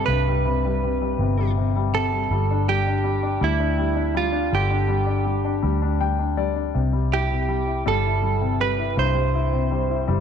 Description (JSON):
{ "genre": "pop", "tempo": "54 BPM (dotted quarters)", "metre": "6/8", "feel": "straight", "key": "C major", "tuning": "A4 = 438 Hz", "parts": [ { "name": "direct-recorded clean electric guitar", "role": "melody", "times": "0.0-10.2 s", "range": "E4 to C5", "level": "-25 LUFS", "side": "right 9 dB", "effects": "none" }, { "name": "warm grand piano", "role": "accompaniment", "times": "0.0-10.2 s", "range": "G2 to G5", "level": "-26 LUFS", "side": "left 12 dB", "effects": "none" }, { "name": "vintage muted fingered electric bass", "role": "bass", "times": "0.0-10.2 s", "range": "G1 to D2", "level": "-23 LUFS", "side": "equal", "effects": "none" } ], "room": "light reverb, small room ambience", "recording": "1960s-style stereo with parts hard left and right", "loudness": "-20 LUFS", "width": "side -7 dB against mid", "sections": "0.0-10.2 A section", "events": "grand piano fill 5.6-6.8", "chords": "0.0 C5; 2.3 G5; 6.8 C" }